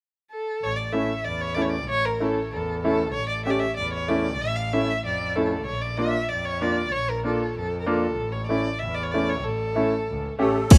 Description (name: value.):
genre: klezmer.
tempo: 95 BPM.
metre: 2/4.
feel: straight.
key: unclear.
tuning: A4 = 441 Hz.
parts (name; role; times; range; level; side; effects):
warm violin; melody; 0.3-10.8 s; A3 to F5; -29 LUFS; equal; tape echo.
clear double bass; bass; 0.6-10.8 s; A1 to F2; -34 LUFS; equal; none.
bright upright piano; accompaniment; 0.9-10.6 s; A3 to G4; -28 LUFS; equal; none.
musette accordion; second line; 10.4-10.8 s; A4 to C#5; -31 LUFS; equal; none.
pop drum kit; drums; 10.7-10.8 s; crash cymbal, kick drum; -10 LUFS; equal; overdrive.
room: studio reverb.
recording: rough home demo mix.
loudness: -26 LUFS.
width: mono.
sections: 0.6-10.7 A section.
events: none.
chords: 0.0 N.C.; 0.6 A; 5.7 Bb; 8.2 A.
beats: | 0.62 1.25 | 1.88 2.52 | 3.15 3.78 | 4.41 5.04 | 5.67 6.31 | 6.94 7.57 | 8.20 8.83 | 9.46 10.09 | 10.71.